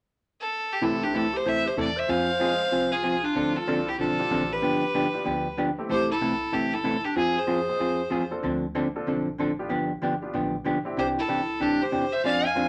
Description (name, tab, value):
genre	country, western swing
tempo	189 BPM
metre	4/4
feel	swing 63% on 8ths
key	C major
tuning	A4 = 440 Hz
part	clear fiddle	melody	0.4-8.3, 11.0-12.7 s	F4 to Ab5	-30 LUFS	equal	none
part	breathy clarinet	second line	0.8-8.3, 11.0-12.7 s	C4 to F5	-32 LUFS	equal	none
part	clear upright piano	accompaniment	0.8-11.0 s	Ab3 to A4	-37 LUFS	equal	none
part	hollow-body jazz guitar	accompaniment	0.8-12.7 s	C3 to A4	-29 LUFS	equal	none
part	upright bass	bass	0.8-12.7 s	G1 to F2	-45 LUFS	equal	none
room	wet small room reverb, RT60 0.5 s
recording	none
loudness	-26 LUFS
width	mono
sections	0.8-5.9 A section; 5.9-12.7 B section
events	none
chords	0.0 N.C.; 0.8 C6; 2.1 Fm; 3.4 Dm7; 4.6 G7; 5.9 C6; 7.2 Fm; 8.4 Dm7; 9.7 G7; 11.0 Cadd9